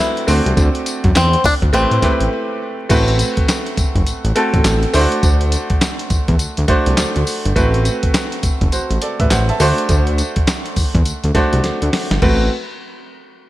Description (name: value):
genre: R&B, new jack swing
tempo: 103 BPM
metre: 4/4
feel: swing 62% on 16ths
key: A dorian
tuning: A4 = 441 Hz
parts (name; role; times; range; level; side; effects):
- bluegrass banjo; melody; 0.0-2.3 s; C4 to E4; -19 LUFS; left 2 dB; digital delay
- bright grand piano; accompaniment; 0.0-12.5 s; A3 to A5; -19 LUFS; right 1 dB; none
- dusty soul sampler-style drum kit; drums; 0.2-12.4 s; crash cymbal, handclaps, hi-hat, kick drum, snare drum, tambourine; -18 LUFS; equal; none
- fat analog bass; bass; 0.3-12.5 s; F#1 to A2; -16 LUFS; equal; none
room: little or no reverb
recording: none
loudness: -13 LUFS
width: side -15 dB against mid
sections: 0.0-2.9 A section; 2.9-12.2 B section; 12.2-13.5 C section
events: break 2.3-2.9; drum fill 11.6-12.2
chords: 0.3 D7; 1.7 Am9; 2.9 Am69; 4.9 D7; 7.6 Am69; 9.6 D7; 12.2 Am69